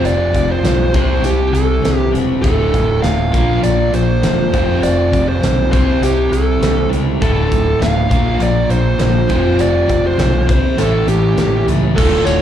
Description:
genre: classic rock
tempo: 101 BPM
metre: 4/4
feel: straight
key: unclear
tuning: A4 = 441 Hz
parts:
  - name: fuzz lead guitar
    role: melody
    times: 0.0-12.4 s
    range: G4 to F5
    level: -18 LUFS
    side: equal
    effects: distortion, slapback echo, tape echo
  - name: picked twelve-string acoustic guitar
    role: accompaniment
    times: 0.0-12.4 s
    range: A2 to F4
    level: -28 LUFS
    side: left 2 dB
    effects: none
  - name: crunchy overdriven guitar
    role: riff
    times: 0.0-12.4 s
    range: D2 to C5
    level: -19 LUFS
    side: right 6 dB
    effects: slapback echo
  - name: overdriven electric guitar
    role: riff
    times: 0.0-12.4 s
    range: D2 to C4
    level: -22 LUFS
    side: left 10 dB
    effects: none
  - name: growling fingered electric bass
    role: bass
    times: 0.0-12.4 s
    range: D1 to C#2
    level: -17 LUFS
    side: equal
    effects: overdrive
  - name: huge arena drum kit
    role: drums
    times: 0.0-12.1 s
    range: crash cymbal, hi-hat, kick drum, snare drum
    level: -20 LUFS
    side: equal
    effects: none
  - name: cranked stack guitar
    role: riff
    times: 12.0-12.4 s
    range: D2 to F4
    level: -22 LUFS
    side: equal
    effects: overdrive, tremolo
  - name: tambourine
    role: percussion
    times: 12.0-12.4 s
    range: none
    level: -32 LUFS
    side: left 3 dB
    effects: none
room: studio reverb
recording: live gig heard through the venue's PA, club reverb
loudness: -12 LUFS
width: side -10 dB against mid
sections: 0.0-12.0 A section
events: none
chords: 0.0 Fsus2; 0.9 C; 2.4 Dmadd9; 3.3 Bb; 4.5 Fsus2; 5.7 C; 7.2 Dmadd9; 8.1 Bb; 9.3 Fsus2; 10.5 C; 10.8 A7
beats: | 0.05 0.65 1.25 1.84 | 2.44 3.04 3.64 4.23 | 4.83 5.42 6.02 6.62 | 7.21 7.81 8.40 9.00 | 9.59 10.19 10.78 11.37 | 11.97

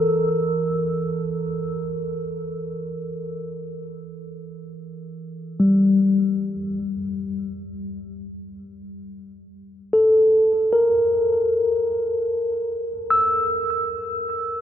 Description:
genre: ambient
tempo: free time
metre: none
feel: none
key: unclear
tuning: A4 = 440 Hz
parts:
  - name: mellow tine electric piano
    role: solo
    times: 0.0-14.6 s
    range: G3 to E6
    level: -20 LUFS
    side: left 1 dB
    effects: ping-pong delay
room: wet huge ambient reverb, RT60 7.2 s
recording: cassette tape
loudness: -19 LUFS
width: side -10 dB against mid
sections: 0.0-6.8 A section; 6.8-14.6 B section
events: none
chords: 0.0 Edim; 6.8 E(b5, no3)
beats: free time

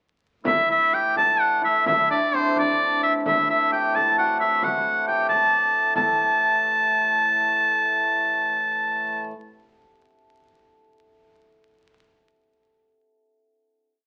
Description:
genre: medieval dance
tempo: 85-96 BPM (dotted quarters)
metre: 6/8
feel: straight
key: A dorian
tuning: A4 = 439 Hz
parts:
  - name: hammered dulcimer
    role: second line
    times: 0.4-10.0 s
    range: C4 to A4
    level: -29 LUFS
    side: equal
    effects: none
  - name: hand-pumped harmonium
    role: drone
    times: 0.4-9.3 s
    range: A2 to E3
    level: -38 LUFS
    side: equal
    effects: none
  - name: edgy shawm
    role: melody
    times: 0.5-9.3 s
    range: C5 to A5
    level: -22 LUFS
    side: equal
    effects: none
  - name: frame drum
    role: percussion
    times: 0.5-6.2 s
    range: none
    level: -34 LUFS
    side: equal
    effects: none
room: wet studio reverb, RT60 0.8 s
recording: very old 78 rpm record, vinyl crackle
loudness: -21 LUFS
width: mono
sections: 0.5-6.0 A section; 6.0-8.5 final chord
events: speeding up 0.5-8.5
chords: none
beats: | 0.45 1.16 | 1.86 2.56 | 3.25 3.94 | 4.62 5.29 | 5.96 6.61 | 7.26 7.90

